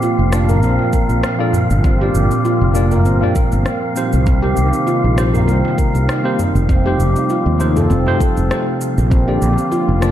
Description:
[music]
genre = organic downtempo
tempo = 99 BPM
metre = 4/4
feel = swing 54% on 16ths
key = C dorian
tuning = A4 = 437 Hz
[part]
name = warm analog pad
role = sustained chords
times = 0.0-10.1 s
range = Bb2 to F4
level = -20 LUFS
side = right 2 dB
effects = wide subtle chorus, sidechain pumping
[part]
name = handpan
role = arpeggios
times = 0.0-10.1 s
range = C4 to Bb4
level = -20 LUFS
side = left 1 dB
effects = ping-pong delay
[part]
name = electronic cabasa and rim click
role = drums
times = 0.0-10.1 s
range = none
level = -28 LUFS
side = left 1 dB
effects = studio reverb
[part]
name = wind-like tuned noise texture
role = texture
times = 0.0-10.1 s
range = F5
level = -28 LUFS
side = right 2 dB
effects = built-in reverb
[part]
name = fretless electric bass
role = bass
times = 0.2-10.1 s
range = F1 to Eb2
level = -15 LUFS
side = equal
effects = sidechain pumping
[part]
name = tine electric piano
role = accompaniment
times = 0.3-10.1 s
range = A3 to A5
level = -23 LUFS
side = left 2 dB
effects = medium stereo tremolo, sidechain pumping, ping-pong delay
[part]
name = darbuka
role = percussion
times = 0.5-9.7 s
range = none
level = -25 LUFS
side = equal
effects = none
[part]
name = electronic kick drum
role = drums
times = 0.9-9.2 s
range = none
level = -16 LUFS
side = equal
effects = studio reverb
[sound]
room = moderate recital hall reverb, RT60 1.5 s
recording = dark, warm production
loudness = -13 LUFS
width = side -11 dB against mid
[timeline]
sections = 0.0-10.1 A section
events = none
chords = 0.0 Bbmaj7; 1.8 Gm7; 4.3 Cm7; 6.7 F9; 9.1 Bbmaj7

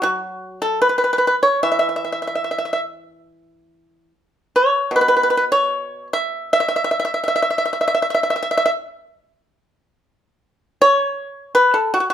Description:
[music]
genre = chinese traditional, Chinese solo plucked strings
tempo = 76 BPM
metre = 4/4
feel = rubato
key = unclear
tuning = A4 = 441 Hz
[part]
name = pipa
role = solo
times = 0.0-12.1 s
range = B2 to E5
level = -16 LUFS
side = equal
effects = none
[sound]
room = light reverb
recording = band playing live in one room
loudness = -16 LUFS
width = side -10 dB against mid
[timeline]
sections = 0.0-12.1 A section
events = none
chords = none

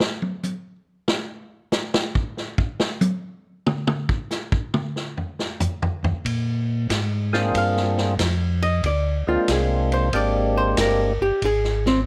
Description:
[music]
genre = soul jazz organ trio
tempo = 93 BPM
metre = 4/4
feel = swing 67% on 8ths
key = unclear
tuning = A4 = 440 Hz
[part]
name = vintage drum kit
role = drums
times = 0.0-12.0 s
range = hi-hat, kick drum, ride cymbal, snare drum, toms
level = -27 LUFS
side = equal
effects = none
[part]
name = mellow tonewheel organ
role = bass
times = 6.0-12.0 s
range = G1 to Bb2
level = -26 LUFS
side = equal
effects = slow rotary speaker
[part]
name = percussive tonewheel organ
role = melody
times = 7.3-11.1 s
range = Ab3 to Ab4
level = -25 LUFS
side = equal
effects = slow rotary speaker
[part]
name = archtop guitar, miked and amplified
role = accompaniment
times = 7.6-12.0 s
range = C4 to F5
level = -25 LUFS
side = equal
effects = none
[sound]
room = light reverb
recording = none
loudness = -23 LUFS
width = mono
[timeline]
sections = 0.0-12.1 A section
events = hollow-body jazz guitar solo 0.0-12.1; drum solo 0.0-6.2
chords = 0.0 N.C.; 6.2 Bb9; 11.4 Ab

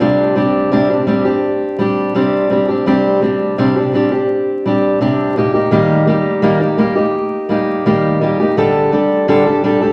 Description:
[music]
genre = pop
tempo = 84 BPM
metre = 4/4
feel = straight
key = unclear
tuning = A4 = 440 Hz
[part]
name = fingerpicked steel-string acoustic guitar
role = solo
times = 0.0-9.9 s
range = C3 to A4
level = -14 LUFS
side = equal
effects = none
[sound]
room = wet large studio reverb, RT60 1.3 s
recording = vinyl crackle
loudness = -14 LUFS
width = mono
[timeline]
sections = 0.0-9.9 A section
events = none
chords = 0.0 Csus2; 5.4 Eb; 8.6 Dsus4

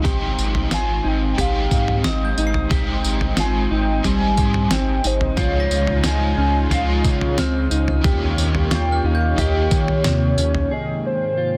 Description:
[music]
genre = dream pop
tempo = 90 BPM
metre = 4/4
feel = straight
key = Ab major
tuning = A4 = 445 Hz
[part]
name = crunchy overdriven guitar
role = accompaniment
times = 0.0-11.2 s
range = Db3 to C5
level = -30 LUFS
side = equal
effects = tremolo, ensemble chorus
[part]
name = warm analog pad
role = sustained chords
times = 0.0-11.6 s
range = Ab2 to G5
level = -30 LUFS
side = equal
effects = chorus
[part]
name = mellow electric guitar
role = arpeggios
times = 0.0-11.6 s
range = C3 to Ab4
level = -27 LUFS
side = equal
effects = lush chorus, digital delay
[part]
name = round analog bass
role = bass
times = 0.0-10.7 s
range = Ab1 to Eb3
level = -24 LUFS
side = equal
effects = none
[part]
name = lo-fi sampler-style drum kit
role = drums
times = 0.0-10.7 s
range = kick drum, snare drum, tambourine, toms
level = -25 LUFS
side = equal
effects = overdrive
[part]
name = glockenspiel with brass mallets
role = texture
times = 0.0-11.3 s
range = Bb5 to C7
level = -37 LUFS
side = equal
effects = digital delay
[part]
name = warm velvety synth lead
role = melody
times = 0.7-11.6 s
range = C5 to Ab5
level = -28 LUFS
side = equal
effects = chorus, digital delay
[sound]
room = light reverb, digital ambience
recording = dense, heavily limited modern master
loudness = -19 LUFS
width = mono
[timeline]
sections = 0.0-10.7 A section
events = none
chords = 0.0 Abmaj7; 5.4 Dbmaj7; 8.0 Eb7; 10.7 Abmaj9

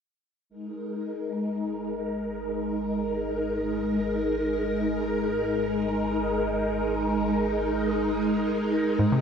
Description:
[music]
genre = ambient, sequencer-driven space music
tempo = free time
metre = none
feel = none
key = unclear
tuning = A4 = 442 Hz
[part]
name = phased string machine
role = sustained chords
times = 0.5-9.2 s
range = Ab3 to Bb4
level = -25 LUFS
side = equal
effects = ensemble chorus, phaser
[part]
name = fat analog bass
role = bass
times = 0.5-9.2 s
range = Ab1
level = -38 LUFS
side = equal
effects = none
[part]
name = analog pluck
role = riff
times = 9.0-9.2 s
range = Ab2 to C3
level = -21 LUFS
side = equal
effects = chorus
[sound]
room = wet huge ambient reverb, RT60 8.2 s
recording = dreamy mix soaked in reverb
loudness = -25 LUFS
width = side -7 dB against mid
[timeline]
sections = 0.5-9.2 A section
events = fade-in on analog synth bass 0.5-9.2; filter sweep on string machine 0.5-9.2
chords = 0.5 Absus2

